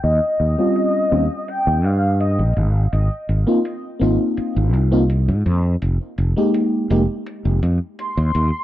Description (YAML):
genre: vaporwave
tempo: 83 BPM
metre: 4/4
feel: straight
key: F minor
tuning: A4 = 440 Hz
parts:
  - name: warm velvety synth lead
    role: melody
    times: 0.0-2.7, 8.0-8.6 s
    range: Eb5 to C6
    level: -22 LUFS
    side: equal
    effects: chorus, tape echo
  - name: fretless electric bass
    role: bass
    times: 0.0-8.5 s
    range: F1 to Ab2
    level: -17 LUFS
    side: equal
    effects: none
  - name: electronic hi-hat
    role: drums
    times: 0.0-8.5 s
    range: none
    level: -45 LUFS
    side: equal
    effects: overdrive, low-pass filter on hats, low-pass filter on room
  - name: mellow FM electric piano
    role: accompaniment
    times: 0.6-7.0 s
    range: G3 to G4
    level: -20 LUFS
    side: equal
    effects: wide subtle chorus, cassette tape, analog delay
room: light reverb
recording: dark, warm production, cassette tape, low-pass filter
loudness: -16 LUFS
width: side -13 dB against mid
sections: 0.0-8.6 A section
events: filter sweep 0.0-8.6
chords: 0.0 Eb13; 2.6 Ab6; 5.8 Fm11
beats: | 0.04 0.76 1.48 2.21 | 2.93 3.65 4.37 5.10 | 5.82 6.54 7.27 7.99